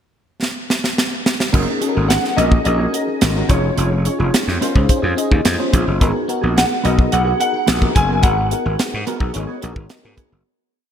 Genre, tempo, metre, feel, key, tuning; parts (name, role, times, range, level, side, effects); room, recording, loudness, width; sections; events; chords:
polished 1980s jazz-funk pop; 108 BPM; 4/4; straight; A4 = 440 Hz
tight funk drum kit; drums; 0.4-10.3 s; crash cymbal, hi-hat, kick drum, snare drum; -17 LUFS; equal; gated reverb
FM electric piano; accompaniment; 1.5-10.5 s; Cb4 to Eb5; -22 LUFS; left 2 dB; ensemble chorus
mellow electric guitar; riff; 1.5-10.4 s; Bb3 to Bb4; -26 LUFS; right 4 dB; ensemble chorus
gritty slap bass; bass; 1.5-10.4 s; F1 to Ab2; -19 LUFS; equal; overdrive
warm grand piano; melody; 2.1-9.9 s; Db5 to Ab5; -21 LUFS; left 1 dB; ensemble chorus
light reverb, small room ambience; bright 1980s-style digital production; -15 LUFS; side -9 dB against mid
0.0-1.5 pickup bar; 1.5-10.5 pre-chorus
drum fill 0.4-1.5; fade-out 8.2-10.5; FM electric piano fill 9.6-10.5
0.0 N.C.; 1.5 Gb69; 3.5 Dbmaj7/F; 6.0 Abm7